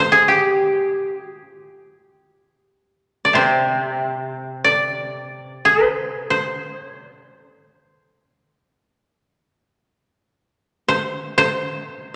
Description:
japanese traditional; free time; A4 = 440 Hz
koto; melody; 0.0-12.2 s; G4 to D5; -19 LUFS; equal
koto; accompaniment; 3.3-6.6 s; C3; -25 LUFS; equal
wet concert hall reverb, RT60 2.3 s; -19 LUFS; mono
0.0-2.5 A section; 2.5-12.2 A section
free time

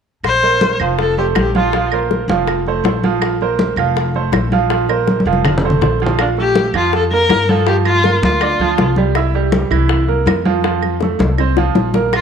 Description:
latin, salsa; 162 BPM; 4/4; straight; Bb major; A4 = 442 Hz
upright bass; bass; 0.2-12.2 s; F1 to G2; -19 LUFS; left 1 dB
bongos; percussion; 0.2-12.2 s; -22 LUFS; left 13 dB
claves; percussion; 0.2-12.2 s; -26 LUFS; right 12 dB
warm viola; melody; 0.3-1.9, 6.2-8.9, 12.2 s; D4 to C5; -16 LUFS; left 3 dB
congas; percussion; 0.3-12.2 s; -20 LUFS; left 1 dB
bright upright piano; accompaniment; 0.4-12.2 s; E3 to F5; -18 LUFS; right 8 dB
moderate echo chamber reverb, RT60 1.5 s, small room ambience; 1960s-style stereo with parts hard left and right; -13 LUFS; side -7 dB against mid
0.2-6.2 A section; 6.2-12.2 B section
drum fill 5.1-6.2, 11.0-12.1
0.2 Bbsus2; 1.0 F; 1.7 Bbsus2; 2.5 F; 3.2 Bbsus2; 4.0 F; 4.7 Bbsus2; 5.4 F; 6.2 Bb5; 7.7 Gm7; 9.2 C7; 10.6 F
| 0.25 0.62 0.99 1.36 | 1.73 2.10 2.48 2.85 | 3.22 3.59 3.96 4.33 | 4.70 5.08 5.45 5.82 | 6.19 6.56 6.93 7.30 | 7.67 8.04 8.41 8.79 | 9.16 9.53 9.90 10.27 | 10.64 11.01 11.38 11.75 | 12.12

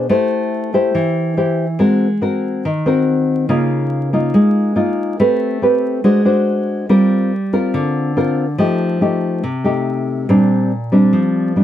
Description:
bossa nova; 141 BPM; 4/4; straight; A4 = 439 Hz
nylon-string guitar; solo; 0.0-11.6 s; Bb2 to C5; -14 LUFS; left 1 dB
moderate booth ambience, RT60 0.1 s; vinyl crackle; -14 LUFS; side -11 dB against mid
0.0-11.6 A section
0.1 Am7; 1.8 Ab9; 3.5 Db69; 5.2 Am9; 6.0 Ab7#11; 6.9 Gm7; 8.6 F9; 10.3 Bb69
| 0.09 0.52 0.94 1.37 | 1.79 2.21 2.64 3.06 | 3.49 3.91 4.34 4.76 | 5.18 5.61 6.03 6.46 | 6.88 7.31 7.73 8.16 | 8.58 9.01 9.43 9.85 | 10.28 10.70 11.13 11.55

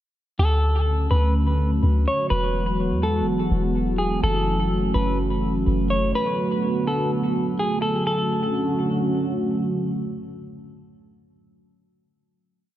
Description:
hip hop, atmospheric cloud-rap; 125 BPM; 4/4; half-time; D lydian; A4 = 436 Hz
semi-hollow electric guitar; melody; 0.4-9.5 s; G#4 to C#5; -26 LUFS; equal; spring reverb, tape echo
dark analog pad; sustained chords; 0.4-11.4 s; D3 to F#4; -24 LUFS; equal; chorus
soft 808-style bass; bass; 0.4-6.1 s; E1 to E2; -22 LUFS; equal
light reverb; echo-heavy mix, nothing above 7.5 kHz; -20 LUFS; side -12 dB against mid
0.4-8.1 breakdown; 8.1-11.9 final chord
0.4 Dmaj7; 2.3 Eadd9; 4.2 F#m7; 6.1 Bm7; 8.1 Dmaj7
| 0.39 0.87 1.35 1.83 | 2.31 2.79 3.27 3.75 | 4.23 4.71 5.19 5.67 | 6.15 6.63 7.11 7.59 | 8.07 8.55 9.03 9.51 | 9.99 10.47 10.95 11.43

